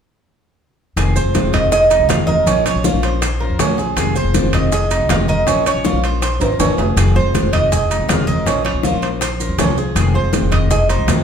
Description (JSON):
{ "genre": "latin, Cuban son and guajira", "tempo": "160 BPM", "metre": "4/4", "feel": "straight", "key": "F minor", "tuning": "A4 = 444 Hz", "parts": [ { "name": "Cuban tres", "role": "melody", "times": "1.0-11.2 s", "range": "Ab4 to F5", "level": "-19 LUFS", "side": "right 3 dB", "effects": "none" }, { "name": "fingerpicked plugged-in steel-string acoustic guitar", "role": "accompaniment", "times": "1.0-11.2 s", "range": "C3 to C5", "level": "-22 LUFS", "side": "left 3 dB", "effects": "none" }, { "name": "upright bass", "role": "bass", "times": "1.0-11.2 s", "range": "F1 to F2", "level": "-19 LUFS", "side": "equal", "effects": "none" }, { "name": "bongos", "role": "percussion", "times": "1.0-11.2 s", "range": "none", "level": "-24 LUFS", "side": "left 4 dB", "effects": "none" }, { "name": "congas", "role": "percussion", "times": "1.0-11.2 s", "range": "none", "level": "-24 LUFS", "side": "equal", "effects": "none" }, { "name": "maracas", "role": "percussion", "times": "1.0-11.2 s", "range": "none", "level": "-29 LUFS", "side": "right 6 dB", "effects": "none" }, { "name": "timbales", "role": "percussion", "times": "1.0-11.2 s", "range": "none", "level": "-24 LUFS", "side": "right 3 dB", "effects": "none" }, { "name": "Cuban tres", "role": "arpeggios", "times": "1.2-11.2 s", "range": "Db4 to Eb5", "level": "-23 LUFS", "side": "right 4 dB", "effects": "none" } ], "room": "wet large studio reverb, RT60 1.1 s", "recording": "band playing live in one room", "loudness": "-13 LUFS", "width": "side -7 dB against mid", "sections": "1.0-11.2 A section", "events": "drum fill 6.4-7.0", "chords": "1.0 Fm7; 2.5 Bbmadd9; 4.0 Fm7; 5.5 Bbmadd9; 7.0 Fm7; 8.5 Bbmadd9; 10.0 Fm7" }